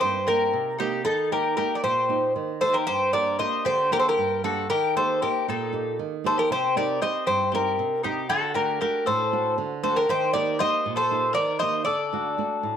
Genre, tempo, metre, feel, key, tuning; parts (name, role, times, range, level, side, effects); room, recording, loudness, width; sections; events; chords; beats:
greek folk, Greek bouzouki band; 233 BPM (eighths); 7/8; straight; A4 = 437 Hz
Greek bouzouki; melody; 0.0-12.8 s; G4 to Eb5; -24 LUFS; equal
mandolin; second line; 0.0-12.8 s; Eb4 to C5; -28 LUFS; left 11 dB
flamenco guitar; accompaniment; 0.0-12.8 s; G2 to G4; -31 LUFS; right 11 dB
wet spring reverb, RT60 1.1 s, studio ambience; 1960s-style stereo with parts hard left and right; -22 LUFS; side -8 dB against mid
0.0-12.8 A section
speeding up 0.0-12.8
0.0 Cm7; 1.1 Eb; 2.9 Gm; 4.7 Eb; 6.5 Cm; 8.3 D; 10.1 Eb; 11.9 D
0.01 0.27 0.53 0.79 | 1.05 1.31 1.57 1.84 2.10 2.36 2.62 | 2.88 3.14 3.40 3.66 3.92 4.18 4.44 | 4.70 4.95 5.21 5.47 5.73 5.99 6.25 | 6.50 6.76 7.02 7.28 7.53 7.79 8.05 | 8.30 8.56 8.82 9.07 9.33 9.59 9.84 | 10.10 10.35 10.61 10.86 11.12 11.37 11.62 | 11.88 12.13 12.39 12.64